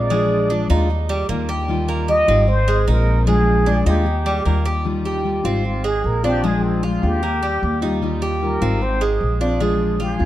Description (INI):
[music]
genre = latin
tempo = 152 BPM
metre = 4/4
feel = straight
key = Eb major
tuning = A4 = 438 Hz
[part]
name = trumpet with plunger mute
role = melody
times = 0.0-10.3 s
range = C4 to Eb5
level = -23 LUFS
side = equal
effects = none
[part]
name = picked steel-string acoustic guitar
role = accompaniment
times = 0.0-10.3 s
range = Eb3 to F4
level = -23 LUFS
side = left 3 dB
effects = none
[part]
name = Cuban tres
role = arpeggios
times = 0.0-10.3 s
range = G3 to G4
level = -23 LUFS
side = right 4 dB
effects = none
[part]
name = upright bass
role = bass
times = 0.0-10.3 s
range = Ab1 to Eb2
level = -20 LUFS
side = equal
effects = none
[sound]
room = light reverb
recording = dark, warm production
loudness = -16 LUFS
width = side -14 dB against mid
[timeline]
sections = 0.0-4.9 A section; 4.9-10.3 B section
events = muted trumpet solo 4.9-10.3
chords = 0.1 Bb7; 0.9 Ebadd9; 2.5 Ab6; 3.3 Bb7; 4.1 Ebadd9; 5.6 Ab6; 6.4 Bb7; 7.2 Ebadd9; 8.8 Ab6; 9.6 Bb7